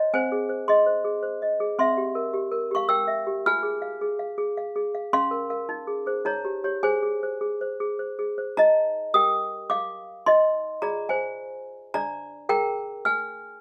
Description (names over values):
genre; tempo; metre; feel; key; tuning
classical, lullaby for toy piano; 107 BPM; 3/4; straight; Ab major, Eb major from 8.6 s; A4 = 440 Hz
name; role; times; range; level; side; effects
toy piano; solo; 0.0-13.6 s; C4 to F6; -25 LUFS; equal; none
room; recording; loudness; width
light reverb; close, detailed microphones; -25 LUFS; mono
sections
0.0-8.6 A section; 8.6-13.6 B section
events
none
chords
0.1 Ab/C; 1.8 C7; 3.4 Fm; 5.1 Bbm/Db; 5.7 Ab/Eb; 6.3 Eb7; 6.8 Ab; 8.6 Eb; 10.3 Fm7/Eb; 11.9 Bb7/D